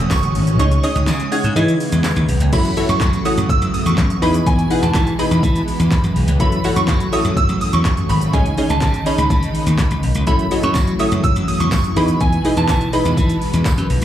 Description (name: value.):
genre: dance-pop.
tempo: 124 BPM.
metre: 4/4.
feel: straight.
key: F# dorian.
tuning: A4 = 440 Hz.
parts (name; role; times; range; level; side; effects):
shimmering bell with halo; melody; 0.0-13.9 s; G#5 to G#6; -23 LUFS; right 3 dB; ensemble chorus, ping-pong delay, slapback echo.
wavetable chord stab; accompaniment; 0.0-13.7 s; C#4 to F#5; -22 LUFS; equal; sidechain pumping, slapback echo.
string machine, full ensemble; sustained chords; 0.0-14.0 s; B2 to G#4; -24 LUFS; equal; ensemble chorus, sidechain pumping.
glassy slap bass; bass; 0.0-14.0 s; F#1 to F#3; -18 LUFS; equal; sidechain pumping.
deep house drum kit; drums; 0.1-14.0 s; crash cymbal, handclaps, hi-hat, kick drum, shaker, snare drum; -19 LUFS; equal; overdrive.
tambourine; percussion; 0.1-2.2, 10.8-13.8 s; none; -35 LUFS; right 4 dB; none.
room: light reverb.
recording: live gig heard through the venue's PA, club reverb.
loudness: -14 LUFS.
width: side -11 dB against mid.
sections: 0.0-2.5 A section; 2.5-14.0 A section.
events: kick muted 0.6-2.5.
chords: 0.0 F#m7; 0.6 C#sus2; 1.6 Emaj7; 2.5 F#m7; 4.2 Emaj7; 6.4 F#m7; 8.3 C#sus2; 10.3 F#m7; 12.0 Emaj7.